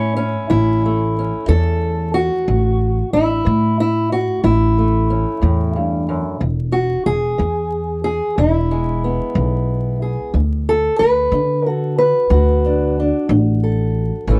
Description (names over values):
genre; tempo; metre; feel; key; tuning
acoustic country blues, solo or duo; 61 BPM (dotted quarters); 12/8; straight; A major; A4 = 440 Hz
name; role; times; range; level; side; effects
fingerpicked old ladder-braced acoustic guitar; melody; 0.0-14.4 s; E2 to B4; -20 LUFS; equal; none
upright bass; bass; 0.0-14.4 s; E1 to D3; -20 LUFS; equal; none
room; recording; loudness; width
little or no reverb; dry, close 1970s-style studio recording, vinyl crackle; -17 LUFS; mono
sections
0.0-14.4 A section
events
none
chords
0.0 A; 6.4 E; 10.3 D